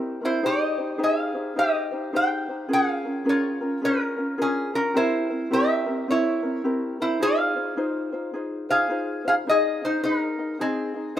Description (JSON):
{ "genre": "Hawaiian", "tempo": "106 BPM", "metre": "4/4", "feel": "swing 63% on 8ths", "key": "F minor", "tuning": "A4 = 440 Hz", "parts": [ { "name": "lap resonator guitar", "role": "melody", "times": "0.0-11.2 s", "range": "C4 to G5", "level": "-23 LUFS", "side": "equal", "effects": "none" }, { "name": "ukulele", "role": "accompaniment", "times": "0.0-11.2 s", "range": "C4 to Eb5", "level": "-26 LUFS", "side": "left 1 dB", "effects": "none" } ], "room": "light reverb, studio reverb", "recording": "rough home demo mix", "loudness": "-22 LUFS", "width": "side -11 dB against mid", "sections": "0.0-9.5 A section; 9.5-11.2 B section", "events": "none", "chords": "0.4 Abmaj7; 2.7 Bbm7; 5.0 C7; 7.2 Fm7; 9.5 Ab" }